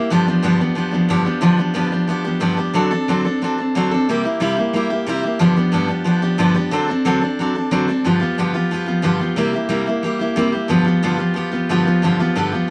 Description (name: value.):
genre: rock.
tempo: 181 BPM.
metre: 4/4.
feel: straight.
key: G mixolydian.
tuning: A4 = 440 Hz.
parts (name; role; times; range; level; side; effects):
picked steel-string acoustic guitar; solo; 0.0-12.7 s; G2 to A4; -18 LUFS; equal; none.
room: moderate small room reverb, RT60 0.5 s.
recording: vinyl crackle.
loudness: -18 LUFS.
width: mono.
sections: 0.0-8.0 A section; 8.0-12.7 B section.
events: none.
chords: 0.1 G7; 2.8 D7; 4.1 C7; 5.4 G7; 6.7 D7; 8.0 G7; 9.4 C7; 10.7 G7.